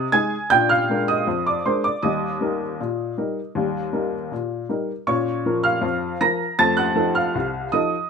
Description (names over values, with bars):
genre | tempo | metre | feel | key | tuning
ragtime piano | 79 BPM | 2/4 | straight | unclear | A4 = 441 Hz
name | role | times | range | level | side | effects
clear upright piano | solo | 0.0-8.1 s | C2 to Bb6 | -19 LUFS | equal | none
room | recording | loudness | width
light reverb | minimal, uncompressed stereo recording | -19 LUFS | side -6 dB against mid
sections
0.0-8.1 A section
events
none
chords
0.5 Bb7; 2.0 Eb; 5.1 Bbm; 6.6 F7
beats
| 0.50 1.26 | 2.02 2.78 | 3.55 4.31 | 5.07 5.83 | 6.59 7.35